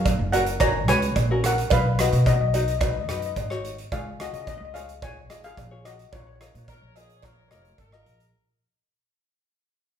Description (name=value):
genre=calypso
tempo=109 BPM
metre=4/4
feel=straight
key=unclear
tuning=A4 = 441 Hz
part: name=steel pan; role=melody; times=0.0-7.7 s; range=E#4 to A#5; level=-27 LUFS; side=left 2 dB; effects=none
part: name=tenor ukulele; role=accompaniment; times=0.0-8.2 s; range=C#4 to D#5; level=-31 LUFS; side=left 3 dB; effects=none
part: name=upright bass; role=bass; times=0.0-8.3 s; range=E#1 to C#3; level=-25 LUFS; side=equal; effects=none
part: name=modern studio drum kit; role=drums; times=0.1-8.3 s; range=hi-hat, kick drum, rim click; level=-28 LUFS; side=equal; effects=none
part: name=cowbell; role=percussion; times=0.1-7.9 s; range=none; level=-29 LUFS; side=right 7 dB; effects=none
part: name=clear horn section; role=second line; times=6.7-8.3 s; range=G#4 to A#4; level=-60 LUFS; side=equal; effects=none
room=moderate large studio reverb, RT60 1.0 s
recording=band playing live in one room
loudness=-20 LUFS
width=side -8 dB against mid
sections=0.0-8.3 A section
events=fade-out 0.0-8.3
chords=0.0 F#; 1.7 B; 3.9 C#6; 6.1 A#m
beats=0.06 0.61 1.17 | 1.72 2.27 2.82 3.37 | 3.92 4.47 5.03 5.58 | 6.13 6.68 7.23 7.79